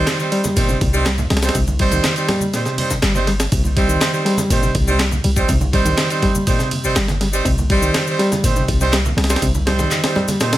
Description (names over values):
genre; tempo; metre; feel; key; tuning
breakbeat, breaks; 122 BPM; 4/4; straight; C minor; A4 = 440 Hz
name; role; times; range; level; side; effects
bright reed electric piano; riff; 0.0-10.6 s; Bb2 to G3; -21 LUFS; left 1 dB; fast tremolo, tube saturation, tape echo
brilliant horn section; stabs; 0.0-10.6 s; G3 to C5; -21 LUFS; right 3 dB; tape echo
warm 808-style bass; bass; 0.0-9.9 s; G1 to C2; -19 LUFS; equal; tube saturation
breakbeat sampler-style drum kit; drums; 0.1-10.6 s; kick drum, ride cymbal, snare drum; -21 LUFS; equal; none
electronic handclaps and shaker; drums; 0.1-10.6 s; none; -26 LUFS; left 2 dB; none
congas and bongos; percussion; 0.1-10.4 s; none; -28 LUFS; right 3 dB; none
room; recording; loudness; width
light reverb; none; -15 LUFS; side -14 dB against mid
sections
0.0-10.6 A section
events
kick drops out 10.4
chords
0.0 Cm